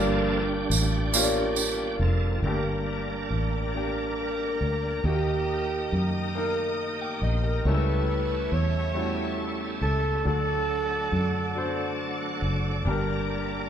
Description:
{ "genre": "slow gospel", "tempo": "46 BPM (dotted quarters)", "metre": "6/8", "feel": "straight", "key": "G harmonic minor", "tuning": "A4 = 435 Hz", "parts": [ { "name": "clear upright piano", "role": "accompaniment", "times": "0.0-13.7 s", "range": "G2 to G5", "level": "-30 LUFS", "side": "left 1 dB", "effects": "none" }, { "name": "bright tonewheel organ", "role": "sustained chords", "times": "0.0-13.7 s", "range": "F3 to A5", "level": "-33 LUFS", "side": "right 2 dB", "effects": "slow rotary speaker, chorus vibrato" }, { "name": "fingered electric bass", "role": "bass", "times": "0.0-13.7 s", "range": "F1 to F#2", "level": "-28 LUFS", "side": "equal", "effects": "none" }, { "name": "tambourine", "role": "percussion", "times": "0.7-2.0 s", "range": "none", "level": "-26 LUFS", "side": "right 6 dB", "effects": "none" }, { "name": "dark studio string section", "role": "sustained chords", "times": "2.4-13.7 s", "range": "D5 to Eb6", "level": "-38 LUFS", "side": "left 2 dB", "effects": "none" }, { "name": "breathy alto saxophone", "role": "melody", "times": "4.2-12.0 s", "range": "G4 to C#5", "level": "-30 LUFS", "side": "right 2 dB", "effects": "none" } ], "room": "moderate large studio reverb, RT60 0.9 s", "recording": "band playing live in one room", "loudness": "-24 LUFS", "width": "side -9 dB against mid", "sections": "0.0-2.4 A section; 2.4-13.7 B section", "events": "tonewheel organ solo 0.0-2.4; tonewheel organ fill 11.6-12.9", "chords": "0.0 Gm7; 2.4 Gm; 5.0 Eb; 7.7 A7/C#; 10.3 D; 12.9 Gm", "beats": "1.15 | 2.45 3.75 | 5.05 6.35 | 7.65 8.96 | 10.26 11.56 | 12.86" }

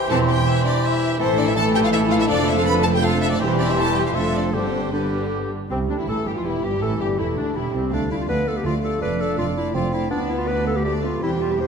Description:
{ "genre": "quick classical-period movement for symphony orchestra", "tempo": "163 BPM", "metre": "3/4", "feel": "straight", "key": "C major", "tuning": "A4 = 438 Hz", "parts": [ { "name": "rich chamber violin section", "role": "melody", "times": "0.0-11.7 s", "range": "C4 to B5", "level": "-28 LUFS", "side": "left 2 dB", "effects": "none" }, { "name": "bright large flute ensemble", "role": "second line", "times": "0.0-5.5 s", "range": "A5 to D6", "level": "-30 LUFS", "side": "equal", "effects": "none" }, { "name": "bright oboe", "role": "second line", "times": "0.0-5.5 s", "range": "G4 to A4", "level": "-32 LUFS", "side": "right 2 dB", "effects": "none" }, { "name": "clear clarinet", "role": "second line", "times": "0.0-11.7 s", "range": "C4 to C5", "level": "-27 LUFS", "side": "left 2 dB", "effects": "none" }, { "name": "mellow bassoon", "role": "accompaniment", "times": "0.0-11.7 s", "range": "D3 to D4", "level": "-27 LUFS", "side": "right 2 dB", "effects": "none" }, { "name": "dark French horn section", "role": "sustained chords", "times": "0.0-11.3 s", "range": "C3 to C5", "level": "-29 LUFS", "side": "left 5 dB", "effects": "none" }, { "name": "rich chamber violin section", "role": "second line", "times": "0.1-11.7 s", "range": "B3 to D5", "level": "-29 LUFS", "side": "left 5 dB", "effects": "none" }, { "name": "warm symphonic viola section", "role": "accompaniment", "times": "0.1-11.7 s", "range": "D3 to A4", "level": "-28 LUFS", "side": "right 2 dB", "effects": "none" }, { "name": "rich chamber cello section", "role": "bass", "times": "0.1-11.7 s", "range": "C2 to A2", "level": "-27 LUFS", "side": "right 2 dB", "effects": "none" }, { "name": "rich chamber double bass section", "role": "bass", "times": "0.1-11.7 s", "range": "E1 to D2", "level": "-27 LUFS", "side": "right 4 dB", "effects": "none" }, { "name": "timpani", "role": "percussion", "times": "4.5-5.1 s", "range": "G2", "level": "-35 LUFS", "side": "left 3 dB", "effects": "none" } ], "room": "wet scoring stage reverb, RT60 1.7 s", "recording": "none", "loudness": "-18 LUFS", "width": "side -6 dB against mid", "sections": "0.0-5.7 A section; 5.7-11.7 B section", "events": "none", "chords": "0.1 C/E; 1.2 A5; 2.3 Dm/F; 3.4 C/E; 4.2 Dm7/F; 4.5 G; 5.7 C; 7.9 Dm; 9.0 Dm/F; 10.1 Bdim/D", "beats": "| 0.10 0.46 0.83 | 1.20 1.56 1.93 | 2.29 2.66 3.02 | 3.40 3.77 4.15 | 4.54 4.93 5.32 | 5.70 6.08 6.45 | 6.82 7.19 7.56 | 7.92 8.29 8.65 | 9.02 9.38 9.75 | 10.12 10.48 10.85 | 11.22 11.59" }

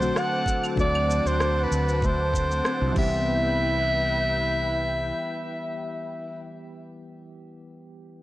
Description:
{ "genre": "sunset chillout", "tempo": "96 BPM", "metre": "4/4", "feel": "straight", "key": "C lydian", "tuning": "A4 = 437 Hz", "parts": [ { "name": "breathy soprano saxophone", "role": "melody", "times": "0.0-6.4 s", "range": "B4 to F#5", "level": "-26 LUFS", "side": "equal", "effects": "ping-pong delay" }, { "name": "soft electric-piano-like synth keys", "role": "accompaniment", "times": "0.0-8.2 s", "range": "D3 to G4", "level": "-32 LUFS", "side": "left 1 dB", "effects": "chorus, auto-pan, ping-pong delay" }, { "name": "lush unison pad", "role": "sustained chords", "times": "0.0-6.4 s", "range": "C4 to D6", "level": "-34 LUFS", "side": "equal", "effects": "chorus" }, { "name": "Celtic harp", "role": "arpeggios", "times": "0.0-6.1 s", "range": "A3 to C5", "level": "-36 LUFS", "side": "left 2 dB", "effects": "ping-pong delay" }, { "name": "mellow fretless electric bass", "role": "bass", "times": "0.0-5.1 s", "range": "C2 to D2", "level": "-27 LUFS", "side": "equal", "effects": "none" }, { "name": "smooth R&B drum kit", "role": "drums", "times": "0.0-3.1 s", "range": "claves, crash cymbal, rim click, shaker", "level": "-33 LUFS", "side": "equal", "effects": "none" }, { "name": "electronic kick drum", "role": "drums", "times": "0.5-3.1 s", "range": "none", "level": "-27 LUFS", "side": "equal", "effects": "none" } ], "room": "light reverb", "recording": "worn, warbling old tape, cassette tape, warbly pitch drift", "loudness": "-22 LUFS", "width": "side -16 dB against mid", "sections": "0.0-3.3 A section; 3.3-5.8 B section", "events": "none", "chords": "0.0 D7; 3.0 Cmaj7", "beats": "0.15 | 0.78 1.40 2.03 2.65 | 3.28 3.90 4.53 5.15" }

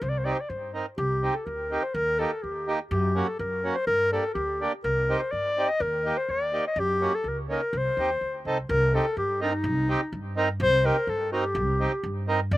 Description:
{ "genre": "klezmer", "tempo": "125 BPM", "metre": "2/4", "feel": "straight", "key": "C dorian sharp4", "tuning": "A4 = 441 Hz", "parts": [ { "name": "warm clarinet", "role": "melody", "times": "0.0-12.6 s", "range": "Eb4 to Eb5", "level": "-26 LUFS", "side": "left 1 dB", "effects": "slapback echo" }, { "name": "upright bass", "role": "bass", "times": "0.0-12.6 s", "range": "G1 to G2", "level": "-30 LUFS", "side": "equal", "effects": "none" }, { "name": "accordion", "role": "accompaniment", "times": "0.2-12.4 s", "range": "Bb3 to Bb4", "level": "-29 LUFS", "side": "right 3 dB", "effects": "slapback echo" } ], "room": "little or no reverb", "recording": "recorded outdoors, with no room sound", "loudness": "-24 LUFS", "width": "side -16 dB against mid", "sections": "1.0-8.7 A section; 8.7-12.6 B section", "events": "none", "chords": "0.0 Cm; 1.9 Eb; 2.9 F#; 3.9 Gm; 4.8 Cm; 5.8 Eb; 6.8 F#; 7.7 Cm", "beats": "| 0.01 0.49 | 0.98 1.46 | 1.94 2.42 | 2.91 3.39 | 3.87 4.36 | 4.84 5.32 | 5.80 6.28 | 6.76 7.25 | 7.73 8.21 | 8.69 9.17 | 9.65 10.13 | 10.61 11.08 | 11.56 12.04 | 12.52" }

